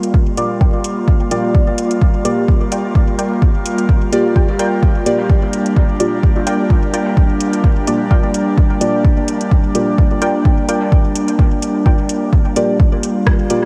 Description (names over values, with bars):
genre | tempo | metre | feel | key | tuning
dub techno | 128 BPM | 4/4 | swing 54% on 16ths | G minor | A4 = 443 Hz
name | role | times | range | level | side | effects
airy breathy pad | sustained chords | 0.0-13.7 s | G3 to F4 | -21 LUFS | equal | chorus, sidechain pumping
soft vintage rhythm box | drums | 0.0-13.6 s | hi-hat, rim click | -25 LUFS | equal | dub echo
electronic kick drum | drums | 0.1-13.4 s | none | -15 LUFS | equal | none
deep mellow chord stab | stabs | 0.4-13.7 s | Bb3 to D5 | -23 LUFS | equal | chorus, phaser, sidechain pumping, dub echo
warbly dusty pluck | riff | 0.6-12.1 s | F4 to G5 | -28 LUFS | equal | chorus, sidechain pumping, dub echo
room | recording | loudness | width
moderate huge ambient reverb, RT60 8.1 s | dreamy mix soaked in reverb, vinyl crackle | -15 LUFS | mono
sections
0.0-12.8 A section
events
none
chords
0.0 Gm7